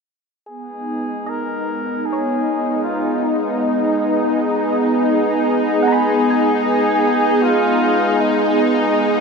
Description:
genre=ambient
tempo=78 BPM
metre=3/4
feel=straight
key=G# dorian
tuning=A4 = 439 Hz
part: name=mellow flugelhorn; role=melody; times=0.5-9.2 s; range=D#4 to A#4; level=-22 LUFS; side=equal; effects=diffuse ambient delay
part: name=warm analog pad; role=sustained chords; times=0.5-9.2 s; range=B3 to G#4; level=-17 LUFS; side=equal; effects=chorus
part: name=bowed-like drone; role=drone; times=1.1-9.2 s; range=G#3 to D#4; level=-22 LUFS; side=left 1 dB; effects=built-in reverb
part: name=soft round pluck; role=arpeggios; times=1.3-7.4 s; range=C#5 to B5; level=-28 LUFS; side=right 2 dB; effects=none
room=wet huge ambient reverb, RT60 8.1 s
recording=cassette tape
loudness=-15 LUFS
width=side -4 dB against mid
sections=0.5-9.2 A section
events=fade-in on flugelhorn 0.5-9.2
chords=0.5 G#m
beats=| 0.49 1.27 2.04 | 2.81 3.58 4.34 | 5.11 5.88 6.65 | 7.42 8.21 8.99

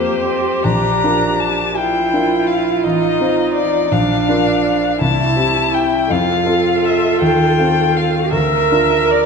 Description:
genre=classical, slow romantic movement for piano quintet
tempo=55 BPM (dotted quarters)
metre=6/8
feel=uneven beats, rubato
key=F major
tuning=A4 = 441 Hz
part: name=muted violin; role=melody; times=0.0-9.3 s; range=C5 to Bb5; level=-18 LUFS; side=left 7 dB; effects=none
part: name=muted cello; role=second line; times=0.0-9.3 s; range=D4 to Bb4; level=-18 LUFS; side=right 6 dB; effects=none
part: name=muted viola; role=accompaniment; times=0.0-9.3 s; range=Bb3 to Bb4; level=-22 LUFS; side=right 3 dB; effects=none
part: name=warm concert grand piano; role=accompaniment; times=0.0-9.3 s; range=A1 to C5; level=-18 LUFS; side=equal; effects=none
room=wet concert hall reverb, RT60 1.7 s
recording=nothing above 10.5 kHz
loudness=-13 LUFS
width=side -5 dB against mid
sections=0.0-9.3 A section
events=none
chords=0.0 F; 0.6 Bb; 2.8 F7/A; 3.9 Bb; 5.0 C; 6.1 F; 7.2 F7/Eb; 8.3 Bb/D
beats=| 0.64 1.76 | 2.84 3.92 | 5.02 6.10 | 7.21 8.32

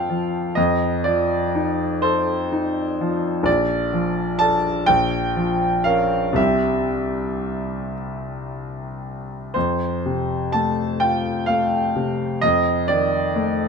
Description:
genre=classical, romantic nocturne for solo piano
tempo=36-43 BPM (dotted quarters)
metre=6/8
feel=rubato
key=F major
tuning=A4 = 440 Hz
part: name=bright grand piano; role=solo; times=0.0-13.7 s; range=Bb1 to A5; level=-19 LUFS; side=equal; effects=none
room=light reverb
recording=close, detailed microphones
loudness=-18 LUFS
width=side -5 dB against mid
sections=0.0-13.7 A section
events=none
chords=0.0 F; 0.6 F7; 3.5 Bbmaj7; 4.9 Bbm; 6.4 C; 9.6 F; 12.4 F7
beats=| 0.57 2.03 | 3.47 4.88 | 6.37 7.94 | 9.55 11.01 | 12.42

